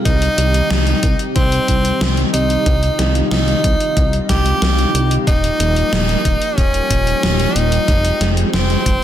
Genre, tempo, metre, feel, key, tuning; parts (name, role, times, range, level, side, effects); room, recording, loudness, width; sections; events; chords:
synthwave; 92 BPM; 4/4; straight; C phrygian; A4 = 439 Hz
lush unison pad; sustained chords; 0.0-9.0 s; C3 to G4; -22 LUFS; equal; chorus, sidechain pumping
edgy tenor saxophone; melody; 0.1-9.0 s; C4 to G4; -19 LUFS; equal; ping-pong delay
chorused synth bass; bass; 0.1-9.0 s; Eb1 to C2; -17 LUFS; equal; tube saturation
electronic kick drum; drums; 0.1-9.0 s; -18 LUFS; equal
gated 80s digital drum machine; drums; 0.1-9.0 s; hi-hat, snare drum; -21 LUFS; left 1 dB; gated reverb, gated reverb snare, overdrive
light reverb; dense, heavily limited modern master; -13 LUFS; side -11 dB against mid
0.0-9.0 A section
0.1 Cm; 5.3 Ebadd9; 7.9 Fmadd9